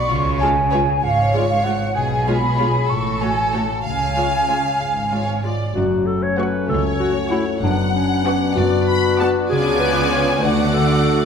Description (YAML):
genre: cinematic, playful, whimsical film cue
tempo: 64 BPM (dotted quarters)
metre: 6/8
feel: straight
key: F# minor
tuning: A4 = 442 Hz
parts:
  - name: mellow small flute group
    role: second line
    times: 0.0-5.4 s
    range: D5 to C#6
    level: -20 LUFS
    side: right 1 dB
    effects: none
  - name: rich studio violin section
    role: second line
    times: 0.0-11.3 s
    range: E#4 to D6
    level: -26 LUFS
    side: equal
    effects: none
  - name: concert harp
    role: arpeggios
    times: 0.0-11.3 s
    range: F#2 to D5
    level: -26 LUFS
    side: left 6 dB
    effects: none
  - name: rich studio cello section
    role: bass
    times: 0.1-11.3 s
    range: C#2 to D3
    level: -25 LUFS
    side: right 3 dB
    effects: none
  - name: rich studio double bass section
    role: bass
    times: 0.1-11.3 s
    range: F#1 to D2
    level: -25 LUFS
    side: right 3 dB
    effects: none
  - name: rich studio violin section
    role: melody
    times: 0.4-11.3 s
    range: C#5 to B5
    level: -26 LUFS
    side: left 4 dB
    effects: none
  - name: rich studio viola section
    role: accompaniment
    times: 0.4-11.3 s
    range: G#3 to F#4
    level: -26 LUFS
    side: right 1 dB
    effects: none
  - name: dark clarinet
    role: second line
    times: 5.7-11.3 s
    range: C#4 to C#5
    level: -21 LUFS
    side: left 1 dB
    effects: none
  - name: mellow French horn section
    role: sustained chords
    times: 5.8-11.3 s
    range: A3 to D4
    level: -25 LUFS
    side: left 4 dB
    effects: none
room: wet scoring stage reverb, RT60 1.9 s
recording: minimal, uncompressed stereo recording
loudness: -16 LUFS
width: side -7 dB against mid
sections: 0.0-5.8 A section; 5.8-11.3 B section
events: none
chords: 0.1 C#; 2.0 C#7/B; 2.9 F#m/A; 3.8 C#; 5.8 F#m; 7.6 Bm/F#; 9.5 C#7b9; 10.4 D